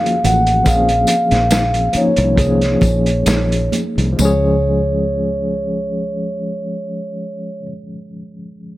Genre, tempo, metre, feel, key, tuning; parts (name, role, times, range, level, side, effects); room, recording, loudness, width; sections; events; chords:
lush 1970s-style soul; 64-73 BPM; 4/4; swing 54% on 16ths; Db major; A4 = 440 Hz
vibraphone with soft mallets; melody; 0.0-7.7 s; Db5 to Gb5; -18 LUFS; equal
tine electric piano; accompaniment; 0.0-8.8 s; F3 to Ab4; -20 LUFS; left 1 dB; medium tremolo
vintage drum kit; drums; 0.1-4.2 s; hi-hat, kick drum, snare drum; -20 LUFS; equal
fingered electric bass; bass; 0.2-7.7 s; A1 to Db2; -18 LUFS; equal
congas; percussion; 0.2-4.6 s; -25 LUFS; right 6 dB
tambourine; percussion; 0.2-4.6 s; -29 LUFS; left 4 dB
light reverb, studio ambience; -14 LUFS; side -16 dB against mid
0.0-4.2 A section; 4.2-7.9 B section
slowing down 0.0-4.2
0.0 Bbm7; 4.2 Db